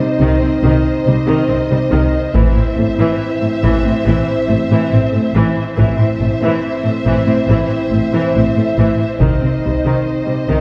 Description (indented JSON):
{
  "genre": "cinematic, epic orchestral film score",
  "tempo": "70 BPM",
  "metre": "4/4",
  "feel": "straight",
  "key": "unclear",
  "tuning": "A4 = 440 Hz",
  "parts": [
    { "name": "warm studio violin section", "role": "melody", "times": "0.0-10.6 s", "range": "Eb5 to E5", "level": "-27 LUFS", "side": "equal", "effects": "none" },
    { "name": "rich symphonic violin section", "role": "second line", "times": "0.0-10.6 s", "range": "C5", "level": "-26 LUFS", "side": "equal", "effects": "none" },
    { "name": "clear symphonic viola section", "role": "accompaniment", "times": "0.0-10.6 s", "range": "Eb3 to C4", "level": "-24 LUFS", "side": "equal", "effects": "none" },
    { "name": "dark French horn section", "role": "sustained chords", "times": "0.0-10.6 s", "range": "C4 to E4", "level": "-22 LUFS", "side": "equal", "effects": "none" },
    { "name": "dark studio cello section", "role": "bass", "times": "0.0-10.6 s", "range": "A2 to C3", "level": "-20 LUFS", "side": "equal", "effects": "none" },
    { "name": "rich symphonic double bass section", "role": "bass", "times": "0.2-10.6 s", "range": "A1 to C2", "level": "-21 LUFS", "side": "equal", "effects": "none" },
    { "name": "taiko ensemble", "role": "drums", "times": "2.3-4.0, 9.2-10.6 s", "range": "none", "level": "-21 LUFS", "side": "equal", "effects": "none" }
  ],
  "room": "wet scoring stage reverb, RT60 2.0 s",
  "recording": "heard from further back in the room",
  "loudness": "-15 LUFS",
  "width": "mono",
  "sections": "0.0-10.6 A section",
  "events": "build-up 0.0-10.6",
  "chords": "0.0 Cm; 2.4 Am; 9.2 Cm"
}